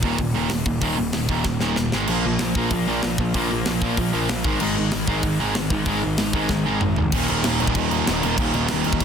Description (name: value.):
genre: punk rock.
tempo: 190 BPM.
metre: 4/4.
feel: straight.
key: unclear.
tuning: A4 = 440 Hz.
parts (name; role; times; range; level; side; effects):
overdriven electric guitar; riff; 0.0-9.0 s; Eb2 to Bb3; -25 LUFS; right 12 dB; none.
sludgy distorted guitar; riff; 0.0-9.0 s; Eb2 to Bb3; -26 LUFS; left 9 dB; overdrive.
fuzz picked electric bass; bass; 0.0-9.0 s; Eb1 to C2; -28 LUFS; equal; overdrive.
tight metal drum kit; drums; 0.0-9.0 s; crash cymbal, hi-hat, kick drum, snare drum, toms; -25 LUFS; equal; none.
overdriven semi-hollow guitar; riff; 2.1-9.0 s; Eb2 to Bb3; -27 LUFS; left 1 dB; none.
room: light reverb.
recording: dense, heavily limited modern master.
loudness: -19 LUFS.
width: side -7 dB against mid.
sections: 0.0-7.1 A section; 7.1-9.0 B section.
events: drum fill 1.5-2.1, 6.5-7.1.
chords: 0.0 Eb5; 1.9 Ab5; 2.1 Bb5; 4.4 Ab5; 7.1 Eb5.